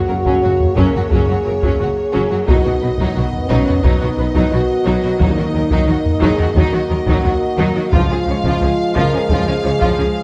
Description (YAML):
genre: cinematic, epic orchestral film score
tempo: 88 BPM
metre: 4/4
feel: straight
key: Eb minor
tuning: A4 = 440 Hz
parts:
  - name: warm symphonic violin section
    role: melody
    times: 0.0-10.2 s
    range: Db5 to F5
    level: -32 LUFS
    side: equal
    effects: none
  - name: dark trombone section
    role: sustained chords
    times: 0.0-10.2 s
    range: Db3 to B3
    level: -27 LUFS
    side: equal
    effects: none
  - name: mellow French horn section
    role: sustained chords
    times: 0.0-10.2 s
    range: B3 to Bb4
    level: -22 LUFS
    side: equal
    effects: none
  - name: warm symphonic violin section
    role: second line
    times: 0.1-10.1 s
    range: Db4 to Db5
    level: -27 LUFS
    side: equal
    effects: none
  - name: warm symphonic viola section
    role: accompaniment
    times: 0.1-10.0 s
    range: F3 to Gb3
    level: -26 LUFS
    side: equal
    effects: none
  - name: warm symphonic cello section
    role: bass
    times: 0.1-10.1 s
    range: Gb2 to Eb3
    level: -25 LUFS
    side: equal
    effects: none
  - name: warm symphonic double bass section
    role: bass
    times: 0.1-10.1 s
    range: Gb1 to Eb2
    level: -24 LUFS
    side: equal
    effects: none
  - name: taiko ensemble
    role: drums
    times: 0.3-10.2 s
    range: none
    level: -21 LUFS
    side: equal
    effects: none
  - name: timpani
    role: percussion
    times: 5.2-6.2 s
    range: Eb3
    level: -28 LUFS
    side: equal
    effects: none
room: moderate scoring stage reverb, RT60 1.9 s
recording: dark, warm production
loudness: -16 LUFS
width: mono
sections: 0.0-10.2 A section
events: none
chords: 0.0 Gb; 2.5 B; 5.2 Ebm; 7.9 Db